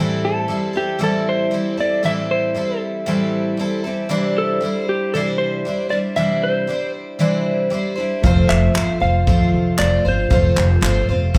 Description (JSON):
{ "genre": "acoustic pop", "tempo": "116 BPM", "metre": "4/4", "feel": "straight", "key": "A minor", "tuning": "A4 = 439 Hz", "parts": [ { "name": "picked twelve-string acoustic guitar", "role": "accompaniment", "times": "0.0-11.4 s", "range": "A2 to C5", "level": "-22 LUFS", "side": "equal", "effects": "none" }, { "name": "electric slide guitar", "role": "melody", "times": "0.2-11.4 s", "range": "G4 to F5", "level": "-24 LUFS", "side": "equal", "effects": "none" }, { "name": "warm upright piano", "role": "accompaniment", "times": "8.2-11.4 s", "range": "A3 to C5", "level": "-32 LUFS", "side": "equal", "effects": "none" }, { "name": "upright bass", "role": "bass", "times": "8.2-11.4 s", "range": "F1 to F2", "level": "-20 LUFS", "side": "equal", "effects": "none" }, { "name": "natural country drum kit", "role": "drums", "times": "8.2-11.4 s", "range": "handclaps, kick drum", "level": "-22 LUFS", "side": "equal", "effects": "none" } ], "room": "moderate large studio reverb, RT60 0.9 s", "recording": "band playing live in one room", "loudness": "-19 LUFS", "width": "mono", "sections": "0.0-11.4 A section", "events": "none", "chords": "0.0 Am7; 4.1 Cadd9; 8.2 F" }